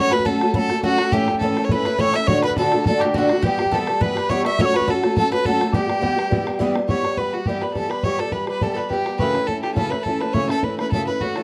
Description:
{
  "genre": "celtic folk, Celtic reel",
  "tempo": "208 BPM",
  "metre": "4/4",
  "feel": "swing 53% on 8ths",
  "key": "E dorian",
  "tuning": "A4 = 439 Hz",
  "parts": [
    { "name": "clear fiddle", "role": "melody", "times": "0.0-11.4 s", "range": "F#4 to E5", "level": "-25 LUFS", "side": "equal", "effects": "none" },
    { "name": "bowl-back mandolin", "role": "second line", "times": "0.0-6.7 s", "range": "F#4 to E5", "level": "-31 LUFS", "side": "equal", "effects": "none" },
    { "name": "mellow mid whistle", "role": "second line", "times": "0.0-11.4 s", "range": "F#5 to E6", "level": "-32 LUFS", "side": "equal", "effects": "none" },
    { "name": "fingerpicked twelve-string acoustic guitar", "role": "accompaniment", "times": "0.0-11.4 s", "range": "D2 to G4", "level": "-24 LUFS", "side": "equal", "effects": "none" },
    { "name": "bodhran", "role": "percussion", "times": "0.1-11.4 s", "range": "none", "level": "-28 LUFS", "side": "equal", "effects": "none" }
  ],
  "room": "light reverb",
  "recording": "dry, close 1970s-style studio recording",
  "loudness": "-20 LUFS",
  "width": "mono",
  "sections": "0.0-6.9 A section; 6.9-11.4 B section",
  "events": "none",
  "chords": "0.0 F#m; 1.1 A; 2.3 D; 3.4 Em; 4.6 F#m; 5.7 Em; 9.2 F#m7",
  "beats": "0.25 0.54 0.83 | 1.12 1.41 1.70 1.99 | 2.28 2.56 2.85 3.14 | 3.43 3.72 4.01 4.30 | 4.59 4.88 5.16 5.45 | 5.74 6.03 6.32 6.60 | 6.89 7.18 7.47 7.75 | 8.04 8.33 8.62 8.91 | 9.19 9.48 9.77 10.05 | 10.34 10.63 10.91 11.20"
}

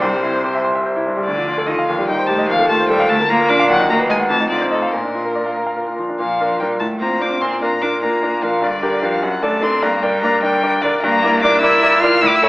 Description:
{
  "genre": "quick classical-period movement for piano trio",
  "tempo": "99 BPM (dotted quarters)",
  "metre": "6/8",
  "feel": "rubato",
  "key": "Bb major",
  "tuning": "A4 = 440 Hz",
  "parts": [
    { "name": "rich violin", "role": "melody", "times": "0.0-12.5 s", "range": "A4 to F6", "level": "-19 LUFS", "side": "left 2 dB", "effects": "none" },
    { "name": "clear cello", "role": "second line", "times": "0.0-12.5 s", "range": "A2 to F4", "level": "-21 LUFS", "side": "right 2 dB", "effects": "none" },
    { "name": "bright baby grand piano", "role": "accompaniment", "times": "0.0-12.5 s", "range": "C2 to C6", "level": "-17 LUFS", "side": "equal", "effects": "none" }
  ],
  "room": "wet recital hall reverb, RT60 1.7 s",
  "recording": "AM radio sound",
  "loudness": "-14 LUFS",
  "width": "side -20 dB against mid",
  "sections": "0.0-6.2 A section; 6.2-12.5 B section",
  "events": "none",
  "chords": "0.0 C; 1.3 Dm; 1.9 Cm/Eb; 2.5 F7/Eb; 3.1 Bb/D; 3.7 B/D#; 4.3 F5; 4.9 Bb; 6.8 F/A; 7.4 Bb; 8.6 Gm; 9.2 D/F#; 9.8 Gm; 11.0 Em7b5/G",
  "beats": "| 0.01 0.64 | 1.26 1.88 | 2.49 3.10 | 3.70 4.30 | 4.92 5.56 | 6.19 6.81 | 7.42 8.02 | 8.62 9.22 | 9.83 10.43 | 11.03 11.62 | 12.23"
}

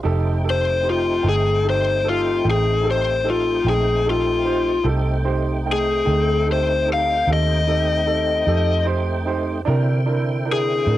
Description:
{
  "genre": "blues",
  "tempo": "50 BPM (dotted quarters)",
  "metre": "12/8",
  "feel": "straight",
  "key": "F mixolydian",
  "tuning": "A4 = 440 Hz",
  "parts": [
    { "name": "clear upright piano", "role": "accompaniment", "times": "0.0-11.0 s", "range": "A3 to G5", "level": "-26 LUFS", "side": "right 7 dB", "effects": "cassette tape" },
    { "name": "tonewheel organ", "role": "sustained chords", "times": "0.0-11.0 s", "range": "D3 to G5", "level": "-28 LUFS", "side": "right 1 dB", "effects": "overdrive, chorus vibrato, slow rotary speaker, cassette tape" },
    { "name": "vintage muted fingered electric bass", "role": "bass", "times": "0.0-11.0 s", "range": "F1 to C3", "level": "-22 LUFS", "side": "equal", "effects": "tube saturation" },
    { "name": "overdriven slide guitar", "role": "melody", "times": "0.5-11.0 s", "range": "F4 to F5", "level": "-19 LUFS", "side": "left 4 dB", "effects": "cassette tape" }
  ],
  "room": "little or no reverb",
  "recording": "home recording on cassette",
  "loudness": "-17 LUFS",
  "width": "side -14 dB against mid",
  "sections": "0.0-11.0 A section",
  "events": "electric slide guitar solo 0.0-11.0",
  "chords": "0.0 F7; 9.7 C7",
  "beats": "| 0.05 1.25 2.45 3.65 | 4.85 6.05 7.25 8.46 | 9.66 10.87"
}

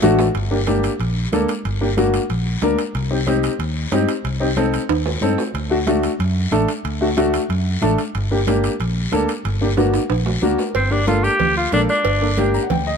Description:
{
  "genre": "latin, cumbia",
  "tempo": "185 BPM",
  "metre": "4/4",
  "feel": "straight",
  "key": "G harmonic minor",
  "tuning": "A4 = 441 Hz",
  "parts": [
    { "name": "warm upright piano", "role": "accompaniment", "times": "0.0-13.0 s", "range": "A3 to Bb5", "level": "-20 LUFS", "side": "left 2 dB", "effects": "none" },
    { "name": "fingered electric bass", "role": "bass", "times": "0.0-13.0 s", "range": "G1 to G2", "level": "-21 LUFS", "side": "equal", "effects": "none" },
    { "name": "congas", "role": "percussion", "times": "0.0-12.9 s", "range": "none", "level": "-26 LUFS", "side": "equal", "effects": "none" },
    { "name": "cowbell and timbales", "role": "percussion", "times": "0.0-12.9 s", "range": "none", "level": "-26 LUFS", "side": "right 7 dB", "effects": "none" },
    { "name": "guiro", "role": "percussion", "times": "0.0-13.0 s", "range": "none", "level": "-32 LUFS", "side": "left 6 dB", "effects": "none" },
    { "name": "bright alto saxophone", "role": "melody", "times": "10.8-12.5 s", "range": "C4 to G4", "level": "-20 LUFS", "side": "left 1 dB", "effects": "none" }
  ],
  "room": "light reverb",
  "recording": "minimal, uncompressed stereo recording",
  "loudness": "-17 LUFS",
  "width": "side -6 dB against mid",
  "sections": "0.3-10.8 A section; 10.8-13.0 B section",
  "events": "drum fill 0.0-0.3, 4.9-5.5, 9.8-10.8; upright piano fill 10.3-10.8, 12.4-13.0",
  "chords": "0.3 Gm; 2.9 Cm; 5.5 D; 8.1 Gm",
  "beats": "0.03 | 0.35 0.67 1.00 1.32 | 1.65 1.97 2.30 2.62 | 2.95 3.27 3.60 3.92 | 4.25 4.57 4.90 5.22 | 5.55 5.87 6.20 6.52 | 6.85 7.17 7.50 7.82 | 8.15 8.47 8.80 9.12 | 9.45 9.78 10.10 10.43 | 10.75 11.08 11.40 11.73 | 12.05 12.38 12.70"
}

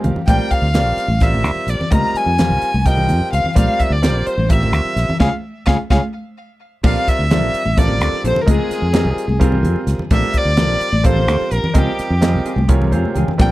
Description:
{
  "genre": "electric jazz fusion",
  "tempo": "256 BPM (eighths)",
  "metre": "7/8",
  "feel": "straight",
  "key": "Bb lydian",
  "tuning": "A4 = 440 Hz",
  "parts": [
    { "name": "bright concert grand piano", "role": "accompaniment", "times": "0.0-13.5 s", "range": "C3 to G5", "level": "-24 LUFS", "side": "right 2 dB", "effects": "none" },
    { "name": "fingered electric bass", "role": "bass", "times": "0.0-13.5 s", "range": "A1 to F2", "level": "-18 LUFS", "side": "equal", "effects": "none" },
    { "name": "crisp fusion drum kit", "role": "drums", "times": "0.0-13.5 s", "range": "crash cymbal, hi-hat, kick drum, snare drum", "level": "-17 LUFS", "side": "equal", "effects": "none" },
    { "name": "congas", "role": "percussion", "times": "0.0-13.5 s", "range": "none", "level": "-23 LUFS", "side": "left 1 dB", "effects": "none" },
    { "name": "rich violin", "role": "melody", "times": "0.3-13.5 s", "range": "G4 to Bb5", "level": "-22 LUFS", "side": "right 1 dB", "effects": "none" },
    { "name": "overdriven semi-hollow guitar", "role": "second line", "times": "0.3-13.5 s", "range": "G4 to Bb5", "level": "-24 LUFS", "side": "left 4 dB", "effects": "none" },
    { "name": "mellow electric guitar", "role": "stabs", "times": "6.8-13.5 s", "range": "F3 to A4", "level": "-24 LUFS", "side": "right 1 dB", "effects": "lush chorus" }
  ],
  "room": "little or no reverb",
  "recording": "dry, close 1970s-style studio recording",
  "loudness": "-14 LUFS",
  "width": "side -17 dB against mid",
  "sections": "0.0-6.8 A section; 6.8-13.5 A section",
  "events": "grand piano fill 0.0, 6.1-6.8, 12.7-13.4; drum fill 0.0, 5.4-6.8, 12.9-13.4; band accent 5.2-6.8",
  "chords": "0.3 Bbmaj9; 1.9 Dbmaj7; 3.6 Bbmaj9; 5.2 Db; 6.8 Bbmaj9; 8.5 Dbmaj7; 10.1 Bbmaj9; 11.8 Dbmaj7",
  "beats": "0.04 | 0.27 0.51 0.74 0.98 1.21 1.45 1.68 | 1.92 2.15 2.39 2.62 2.85 3.09 3.32 | 3.56 3.79 4.03 4.26 4.50 4.73 4.97 | 5.20 5.43 5.67 5.90 6.14 6.37 6.61 | 6.84 7.07 7.31 7.54 7.78 8.01 8.24 | 8.48 8.71 8.95 9.18 9.41 9.65 9.88 | 10.12 10.35 10.59 10.82 11.05 11.29 11.52 | 11.76 11.99 12.22 12.46 12.69 12.93 13.16 | 13.40"
}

